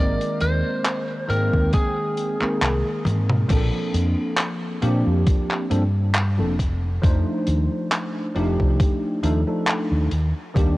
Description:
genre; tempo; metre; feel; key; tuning
vaporwave; 68 BPM; 4/4; swing 54% on 16ths; Bb major; A4 = 440 Hz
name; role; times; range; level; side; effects
lightly driven lead guitar; melody; 0.0-3.0 s; Ab4 to D5; -27 LUFS; equal; tape echo
bell-like tine electric piano; accompaniment; 0.0-10.8 s; Eb3 to G5; -25 LUFS; equal; analog chorus, vintage 12-bit sampler grit, analog delay
fingered electric bass; bass; 0.0-10.8 s; F1 to Bb2; -21 LUFS; equal; none
tight metal drum kit; drums; 0.2-10.8 s; crash cymbal, handclaps, hi-hat, toms; -26 LUFS; equal; vintage 12-bit sampler grit
electronic kick drum; drums; 1.5-10.8 s; none; -20 LUFS; equal; overdrive, vintage 12-bit sampler grit
room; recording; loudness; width
light reverb, small room ambience; worn, warbling old tape, cassette tape, warbly pitch drift; -19 LUFS; side -18 dB against mid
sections
0.0-3.5 A section; 3.5-10.8 B section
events
drum fill 3.1-3.5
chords
0.0 Abmaj9; 3.5 Bbmaj9; 6.6 F13; 10.1 Ebmaj7

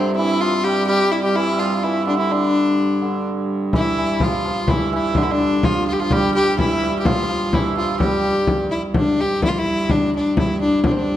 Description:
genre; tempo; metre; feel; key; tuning
medieval dance; 126 BPM; 3/4; straight; unclear; A4 = 440 Hz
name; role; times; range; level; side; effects
clear fiddle; melody; 0.0-11.2 s; C4 to G4; -20 LUFS; left 2 dB; none
hammered dulcimer; second line; 0.0-11.2 s; C3 to G3; -24 LUFS; right 4 dB; none
warm hurdy-gurdy; drone; 0.0-11.2 s; G2; -25 LUFS; equal; none
frame drum; percussion; 3.7-11.2 s; none; -22 LUFS; left 1 dB; none
room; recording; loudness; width
wet recital hall reverb, RT60 1.4 s; dark, warm production; -16 LUFS; side -12 dB against mid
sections
0.0-9.4 A section; 9.4-11.2 B section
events
none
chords
none

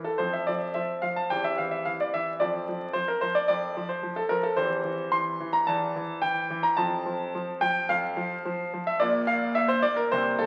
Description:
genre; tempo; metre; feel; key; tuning
classical-period piano sonatina; 109 BPM; 4/4; rubato; F major; A4 = 442 Hz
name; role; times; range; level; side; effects
warm concert grand piano; solo; 0.0-10.5 s; Bb1 to C6; -27 LUFS; equal; none
room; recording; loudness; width
wet recital hall reverb, RT60 1.4 s; very old 78 rpm record, vinyl crackle; -27 LUFS; mono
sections
0.0-10.5 A section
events
none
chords
0.2 F5; 1.3 C/E; 2.4 F5; 4.6 C/E; 6.8 F; 9.0 Bb5

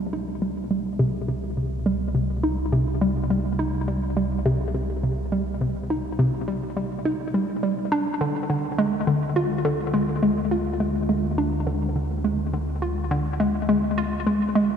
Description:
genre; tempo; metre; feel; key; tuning
ambient, sequencer-driven space music; 104 BPM; 4/4; straight; C minor; A4 = 440 Hz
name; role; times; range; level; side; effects
hollow square pluck; riff; 0.0-14.7 s; C3 to F4; -22 LUFS; equal; chorus, vintage 12-bit sampler grit, ping-pong delay
analog drone; bass; 0.0-14.8 s; C2 to D2; -29 LUFS; equal; chorus
room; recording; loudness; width
wet cathedral reverb, RT60 5.4 s; in a vast, echoing space; -22 LUFS; side -7 dB against mid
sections
0.0-14.8 A section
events
none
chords
0.0 Cm; 7.9 Ddim

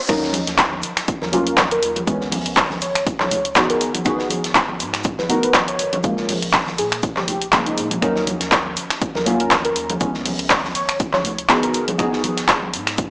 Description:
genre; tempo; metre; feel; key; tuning
deep house; 121 BPM; 4/4; swing 55% on 16ths; Eb minor; A4 = 440 Hz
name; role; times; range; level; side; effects
warm velvety synth lead; melody; 0.1-12.2 s; Eb4 to Db5; -24 LUFS; equal; chorus, vintage 12-bit sampler grit, tape echo
deep mellow chord stab; stabs; 0.1-13.1 s; Db3 to Bb4; -23 LUFS; equal; chorus, phaser, sidechain pumping, analog delay
round analog bass; bass; 0.1-13.1 s; Eb1 to Bb2; -38 LUFS; equal; sidechain pumping
deep house drum kit; drums; 0.1-13.1 s; crash cymbal, finger snaps, handclaps, hi-hat; -18 LUFS; equal; overdrive
electronic kick drum; drums; 0.1-13.1 s; none; -25 LUFS; equal; overdrive
loose indie drum kit; drums; 0.1-13.1 s; hi-hat, shaker, snare drum; -31 LUFS; equal; none
congas; percussion; 0.3-12.7 s; none; -29 LUFS; equal; none
room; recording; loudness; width
light reverb, studio reverb; transformer saturation, small speaker sound; -16 LUFS; side -26 dB against mid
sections
0.1-13.1 A section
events
drop 0.1-13.1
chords
0.1 Ebm7; 2.1 Dbm7; 3.8 Abm7; 6.0 Bbm7; 8.0 Ebm7; 10.0 Dbm7; 11.7 Abm7

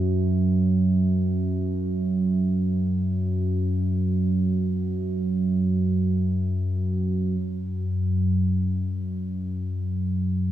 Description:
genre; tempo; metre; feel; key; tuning
ambient; free time; none; none; unclear; A4 = 441 Hz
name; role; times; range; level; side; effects
analog drone; solo; 0.0-10.5 s; F#2 to F#3; -22 LUFS; right 1 dB; chorus, tape echo
room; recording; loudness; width
light reverb; small room ambience; -22 LUFS; side -12 dB against mid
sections
0.0-7.4 A section; 7.4-10.5 B section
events
none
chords
none

